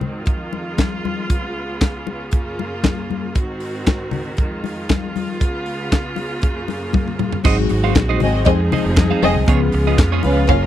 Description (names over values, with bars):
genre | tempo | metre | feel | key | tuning
disco | 117 BPM | 4/4 | straight | unclear | A4 = 440 Hz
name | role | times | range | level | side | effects
bright studio string section | sustained chords | 0.0-10.7 s | Db2 to Bb4 | -25 LUFS | right 1 dB | none
congas | percussion | 0.0-10.6 s | none | -24 LUFS | left 8 dB | none
tight funk drum kit | drums | 0.3-10.6 s | crash cymbal, handclaps, hi-hat, kick drum, snare drum, toms | -17 LUFS | equal | none
clean electric guitar | accompaniment | 7.4-10.7 s | Cb4 to F5 | -22 LUFS | right 10 dB | none
mellow tine electric piano | accompaniment | 7.4-10.7 s | F3 to Bb4 | -21 LUFS | left 4 dB | medium stereo tremolo
overdriven fingered electric bass | bass | 7.5-10.7 s | F1 to F2 | -18 LUFS | right 1 dB | none
dark studio violin section | second line | 8.2-10.6 s | C4 to F5 | -18 LUFS | equal | none
room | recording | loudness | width
little or no reverb | dry, close 1970s-style studio recording | -16 LUFS | side -12 dB against mid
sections
0.0-7.4 A section; 7.4-10.7 B section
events
drum fill 6.9-7.4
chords
0.3 Fm7; 1.3 Db7; 2.3 Gbmaj7; 3.4 Ab7; 4.4 Fm7; 5.4 Db7; 6.4 Gbmaj7; 7.4 Ab7; 8.5 Fm7; 9.5 Db7